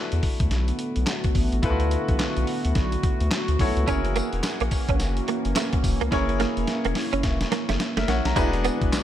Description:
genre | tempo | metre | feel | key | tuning
R&B, new jack swing | 107 BPM | 4/4 | swing 61% on 16ths | unclear | A4 = 440 Hz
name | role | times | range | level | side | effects
bright concert grand piano | accompaniment | 0.0-9.0 s | D4 to A#5 | -30 LUFS | left 4 dB | none
chorused pulse-width pad | sustained chords | 0.0-9.0 s | D3 to F#4 | -29 LUFS | right 1 dB | none
round analog bass | bass | 0.1-8.9 s | E1 to E2 | -25 LUFS | equal | none
dusty soul sampler-style drum kit | drums | 0.1-9.0 s | crash cymbal, handclaps, hi-hat, kick drum, snare drum, tambourine | -26 LUFS | equal | none
direct-recorded clean electric guitar | riff | 3.9-8.8 s | A3 to E4 | -29 LUFS | right 8 dB | ensemble chorus
room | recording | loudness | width
digital ambience | none | -21 LUFS | side -11 dB against mid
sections
0.0-8.4 A section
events
drum fill 6.1-8.4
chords
0.0 D6; 3.9 F#7; 8.4 E7

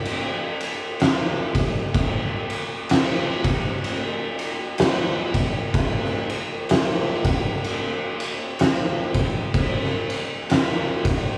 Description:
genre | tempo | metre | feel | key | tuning
metal | 63 BPM | 4/4 | swing 58% on 8ths | none | none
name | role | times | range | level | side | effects
oversized low-tuned drum kit | drums | 0.1-11.2 s | kick drum, ride cymbal, snare drum | -23 LUFS | equal | none
room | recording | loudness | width
light reverb | band playing live in one room, small room ambience | -23 LUFS | mono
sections
0.0-11.4 A section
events
none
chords
none

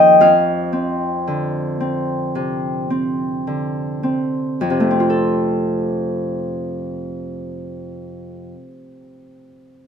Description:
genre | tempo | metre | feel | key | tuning
classical, solo harp piece | 51-62 BPM | 4/4 | rubato | F major | A4 = 440 Hz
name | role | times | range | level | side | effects
Celtic harp | solo | 0.0-8.7 s | Eb2 to G5 | -17 LUFS | equal | none
room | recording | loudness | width
light reverb | none | -17 LUFS | side -7 dB against mid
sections
0.0-4.6 A section; 4.6-9.1 B section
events
slowing down 0.0-4.6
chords
0.2 F5; 4.6 F

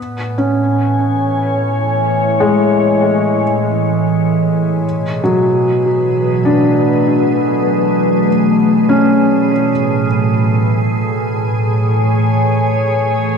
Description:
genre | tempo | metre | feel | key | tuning
ambient | free time | none | none | A major | A4 = 439 Hz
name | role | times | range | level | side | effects
glassy FM pad | sustained chords | 0.1-13.4 s | A2 to G#5 | -14 LUFS | equal | ensemble chorus, built-in reverb
felt-muted upright piano | arpeggios | 0.0-10.1 s | F#3 to D4 | -16 LUFS | left 1 dB | dub echo
organ-like drone | drone | 0.0-13.4 s | E3 to G#4 | -24 LUFS | right 2 dB | ensemble chorus, built-in reverb
room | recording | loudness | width
wet plate reverb, RT60 2.8 s | echo-heavy mix | -12 LUFS | side -6 dB against mid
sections
0.0-13.4 A section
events
fade-in on synth drone 0.0-13.4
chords
0.0 Amaj7; 4.8 Bm7; 9.7 Amaj7

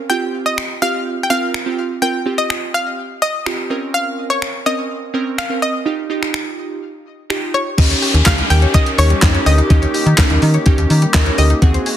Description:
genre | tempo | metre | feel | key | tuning
dance-pop | 125 BPM | 4/4 | straight | unclear | A4 = 439 Hz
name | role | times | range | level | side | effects
analog pluck | melody | 0.0-12.0 s | Db5 to G5 | -20 LUFS | left 1 dB | chorus, ping-pong delay
glassy digital keys | accompaniment | 0.1-12.0 s | C4 to Bb4 | -22 LUFS | right 4 dB | chorus, sidechain pumping
gated 80s digital drum machine | drums | 0.6-12.0 s | crash cymbal, finger snaps, handclaps, hi-hat, kick drum, snare drum | -16 LUFS | equal | gated reverb, gated reverb snare, soft clipping on snare
warm woodwind section | sustained chords | 7.8-12.0 s | Eb3 to G4 | -24 LUFS | left 2 dB | sidechain pumping
mallet-like synth pluck | arpeggios | 7.8-12.0 s | G3 to Gb5 | -26 LUFS | left 5 dB | chorus, sidechain pumping, ping-pong delay
slap-like FM bass | bass | 7.8-11.8 s | Db2 to Eb3 | -14 LUFS | equal | sidechain pumping
downlifter | sound effects | 7.8-11.6 s | none | -24 LUFS | left 1 dB | none
room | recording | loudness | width
light reverb, digital ambience | dense, heavily limited modern master | -14 LUFS | side -11 dB against mid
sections
0.0-7.8 A section; 7.8-12.0 B section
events
none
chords
0.1 Fsus2; 3.7 Bbmadd9; 5.9 Ebadd9; 7.8 Eb7

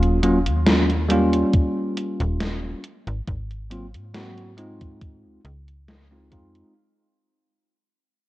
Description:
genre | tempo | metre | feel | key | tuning
vaporwave | 69 BPM | 4/4 | swing 53% on 16ths | unclear | A4 = 443 Hz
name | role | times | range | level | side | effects
bell-like tine electric piano | accompaniment | 0.0-6.7 s | Gb3 to Gb4 | -22 LUFS | equal | analog chorus, analog delay
slap-like FM bass | bass | 0.0-6.6 s | Eb1 to Ab2 | -25 LUFS | equal | none
gated 80s digital drum machine | drums | 0.0-6.7 s | hi-hat, snare drum | -24 LUFS | equal | gated reverb, gated reverb snare
electronic kick drum | drums | 1.5-6.5 s | none | -22 LUFS | equal | none
room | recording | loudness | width
light reverb, digital ambience | cassette tape | -19 LUFS | side -16 dB against mid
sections
0.0-6.8 A section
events
fade-out 0.0-6.8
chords
0.0 Ebm9; 1.5 Eb9; 2.8 Ab13; 5.0 Dbmaj9

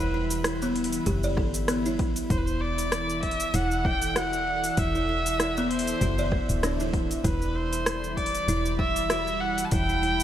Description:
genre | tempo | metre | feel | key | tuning
organic downtempo | 97 BPM | 4/4 | swing 55% on 16ths | E minor | A4 = 438 Hz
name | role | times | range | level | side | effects
clear kamancheh | melody | 0.0-10.2 s | B4 to A5 | -29 LUFS | equal | digital delay
airy breathy pad | sustained chords | 0.0-10.2 s | E3 to B5 | -35 LUFS | equal | chorus, sidechain pumping
buzzing kalimba | arpeggios | 0.0-10.2 s | B3 to D5 | -30 LUFS | right 1 dB | digital delay
woody FM bass | bass | 0.0-10.2 s | D1 to B1 | -30 LUFS | equal | none
deep house drum kit | drums | 0.0-10.2 s | cabasa, hi-hat, rim click | -32 LUFS | equal | overdrive
electronic kick drum | drums | 1.1-9.9 s | none | -30 LUFS | equal | overdrive
room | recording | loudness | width
light reverb | bright 1980s-style digital production | -24 LUFS | side -11 dB against mid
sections
0.0-10.2 A section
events
none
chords
0.0 Em; 2.3 Dadd9/E; 7.2 Em

